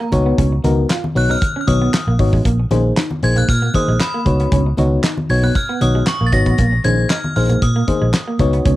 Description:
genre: early-eighties boogie funk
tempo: 116 BPM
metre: 4/4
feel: straight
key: Bb phrygian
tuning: A4 = 440 Hz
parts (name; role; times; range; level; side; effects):
- metallic FM bell; melody; 0.0-8.4 s; Cb6 to Bb6; -23 LUFS; equal; chorus, phaser, cassette tape
- electric guitar through a small old amp; riff; 0.0-8.8 s; Ab3 to F4; -25 LUFS; right 4 dB; wide subtle chorus, cassette tape
- FM electric piano with auto-pan; accompaniment; 0.1-8.8 s; Bb3 to Db5; -20 LUFS; left 3 dB; cassette tape
- vintage muted fingered electric bass; bass; 0.1-8.8 s; Ab1 to Bb2; -16 LUFS; equal; none
- damped 70s drum kit; drums; 0.1-8.8 s; handclaps, hi-hat, kick drum, snare drum; -19 LUFS; equal; cassette tape
- congas; percussion; 0.1-8.8 s; none; -25 LUFS; left 1 dB; none
room: little or no reverb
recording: home recording on cassette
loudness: -14 LUFS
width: side -16 dB against mid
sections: 0.0-8.8 A section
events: none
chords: 0.1 Db9sus4; 2.5 Bb9sus4; 4.3 Db9sus4; 6.6 Bb9sus4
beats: | 0.38 0.90 1.42 1.93 | 2.45 2.97 3.49 4.00 | 4.52 5.04 5.55 6.07 | 6.59 7.11 7.62 8.14 | 8.66

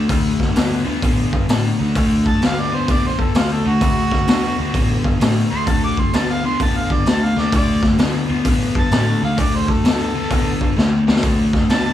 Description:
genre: blues rock power trio and southern rock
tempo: 129 BPM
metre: 4/4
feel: swing 65% on 8ths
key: D mixolydian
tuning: A4 = 441 Hz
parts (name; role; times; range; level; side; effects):
- crunchy overdriven guitar; riff; 0.0-11.9 s; D3 to B3; -19 LUFS; left 2 dB; none
- growling picked electric bass; bass; 0.0-11.9 s; A1 to D3; -24 LUFS; equal; overdrive
- raw garage drum kit; drums; 0.1-11.8 s; hi-hat, kick drum, snare drum; -19 LUFS; equal; none
- mellow harmonica; melody; 2.3-11.9 s; F4 to D6; -24 LUFS; right 2 dB; overdrive
room: studio ambience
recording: small room ambience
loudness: -15 LUFS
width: side -12 dB against mid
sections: 0.0-11.9 A section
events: harmonica solo 0.0-11.9; drum fill 10.8-11.2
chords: 0.0 D5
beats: | 0.10 0.56 1.03 1.49 | 1.96 2.42 2.89 3.35 | 3.81 4.28 4.74 5.21 | 5.67 6.13 6.60 7.06 | 7.52 7.99 8.45 8.91 | 9.38 9.84 10.30 10.77 | 11.23 11.69

